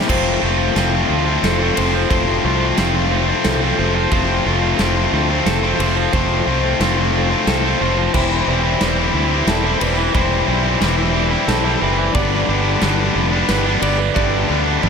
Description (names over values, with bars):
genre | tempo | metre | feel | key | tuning
post-rock | 90 BPM | 3/4 | straight | unclear | A4 = 440 Hz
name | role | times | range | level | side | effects
pedal harmonium | sustained chords | 0.0-14.9 s | C4 to B5 | -29 LUFS | right 3 dB | none
biting overdriven guitar | riff | 0.0-14.9 s | G2 to F4 | -20 LUFS | left 13 dB | none
distorted electric guitar | riff | 0.0-14.9 s | G2 to F4 | -21 LUFS | right 13 dB | overdrive
big rock drum kit | drums | 0.0-14.9 s | crash cymbal, kick drum, ride cymbal, snare drum, toms | -23 LUFS | right 1 dB | none
clean electric guitar | arpeggios | 0.1-14.9 s | A4 to D5 | -26 LUFS | right 3 dB | tape echo
fuzz fingered electric bass | bass | 0.1-14.9 s | E1 to D2 | -21 LUFS | right 1 dB | overdrive
room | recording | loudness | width
light reverb, small room reverb | none | -14 LUFS | side -6 dB against mid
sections
0.1-14.9 A section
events
none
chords
0.1 Fadd9; 8.1 Cadd9/E; 12.2 G